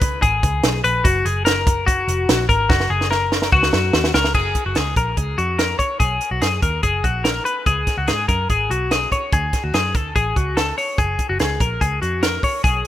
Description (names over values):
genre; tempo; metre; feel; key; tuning
jangly indie pop; 145 BPM; 4/4; straight; F# major; A4 = 443 Hz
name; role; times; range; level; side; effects
twelve-string electric guitar; arpeggios; 0.0-12.9 s; F#4 to C#5; -20 LUFS; left 3 dB; none
vintage muted picked electric bass; bass; 0.0-12.8 s; E#1 to G#2; -23 LUFS; right 1 dB; none
compact cocktail drum kit; drums; 0.0-12.9 s; crash cymbal, hi-hat, kick drum, snare drum; -20 LUFS; right 1 dB; none
room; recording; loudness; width
light reverb, small room ambience; rough home demo mix; -16 LUFS; side -12 dB against mid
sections
0.0-4.3 A section; 4.3-12.9 B section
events
drum fill 2.7-4.3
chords
0.0 C#7(no3); 1.0 F#; 4.3 F#maj7; 6.0 B5; 7.7 C#sus4; 9.3 D; 11.0 F#maj7